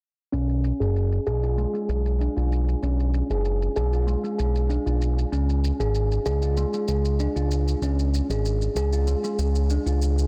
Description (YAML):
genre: organic downtempo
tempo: 96 BPM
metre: 4/4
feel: straight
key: unclear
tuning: A4 = 441 Hz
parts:
  - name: steel tongue drum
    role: arpeggios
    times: 0.3-10.0 s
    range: G#3 to G#4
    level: -29 LUFS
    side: equal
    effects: low-pass filter, tape echo
  - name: smooth gliding synth bass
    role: bass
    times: 0.3-10.2 s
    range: F#1 to C#2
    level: -25 LUFS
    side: equal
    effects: tube saturation
  - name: shaker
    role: drums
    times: 0.3-10.3 s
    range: none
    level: -43 LUFS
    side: equal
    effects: overdrive, low-pass filter on perc
room: little or no reverb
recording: dense, heavily limited modern master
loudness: -24 LUFS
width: mono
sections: 0.3-10.3 A section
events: filter sweep on drum 0.3-10.3; filter sweep on analog synth bass 0.3-10.3; filter sweep on steel tongue drum 0.3-10.3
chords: 0.3 B5; 5.3 C#5